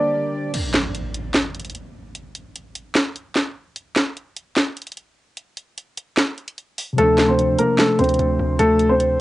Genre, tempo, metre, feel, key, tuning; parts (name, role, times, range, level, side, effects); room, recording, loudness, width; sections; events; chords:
hip hop, trap; 149 BPM; 4/4; half-time; D minor; A4 = 440 Hz
dark baby grand piano; melody; 0.0-0.5, 7.0-9.2 s; A3 to D5; -18 LUFS; left 1 dB; low-pass filter, cassette tape, tape echo
mellow tine electric piano; accompaniment; 0.0-0.6, 6.9-9.2 s; C3 to G4; -24 LUFS; equal; medium stereo tremolo, low-pass filter, cassette tape
dark symphonic string section; sustained chords; 0.0-0.5 s; Bb3 to D5; -36 LUFS; equal; cassette tape
trap drum kit; drums; 0.5-9.1 s; crash cymbal, handclaps, hi-hat, snare drum; -20 LUFS; equal; cassette tape
impact; sound effects; 0.5-2.1 s; -31 LUFS; right 1 dB
hard-hitting 808-style bass; bass; 7.0-9.2 s; D2; -22 LUFS; right 1 dB
light reverb; home recording on cassette, nothing above 10.6 kHz; -17 LUFS; side -16 dB against mid
0.5-9.2 A section
break 0.0-0.5, 0.5-7.0; impact 0.5-2.1; filter sweep 0.5-7.0; kick muted 5.4-7.0
0.0 Gm; 0.5 N.C.; 7.0 Dm7